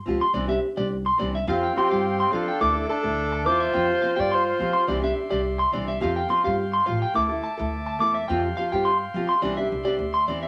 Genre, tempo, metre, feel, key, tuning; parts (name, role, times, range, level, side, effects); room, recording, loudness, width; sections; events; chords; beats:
highlife; 106 BPM; 4/4; straight; F major; A4 = 440 Hz
nylon-string guitar; accompaniment; 0.1-10.5 s; E3 to A4; -30 LUFS; equal
upright bass; bass; 0.1-10.5 s; A1 to F3; -33 LUFS; equal
electric guitar at the edge of break-up; arpeggios; 0.2-10.5 s; D5 to D6; -27 LUFS; equal
dark alto saxophone; melody; 1.5-4.9 s; F4 to D5; -28 LUFS; equal
mellow trumpet; second line; 1.5-4.9 s; C4 to F4; -31 LUFS; equal
overdriven combo organ; sustained chords; 1.5-10.5 s; D5 to D6; -36 LUFS; equal; spring reverb
wet studio reverb, RT60 0.6 s; -24 LUFS; mono
0.0-10.5 A section
0.3 Cadd9; 1.5 Fsus2; 2.6 Dsus2; 3.7 Fsus2; 4.9 Cadd9; 6.0 Fsus2; 7.2 Dsus2; 8.3 Fsus2; 9.4 Cadd9
0.34 0.91 | 1.48 2.04 2.61 3.18 | 3.75 4.32 4.88 5.45 | 6.02 6.59 7.16 7.73 | 8.29 8.86 9.43 10.00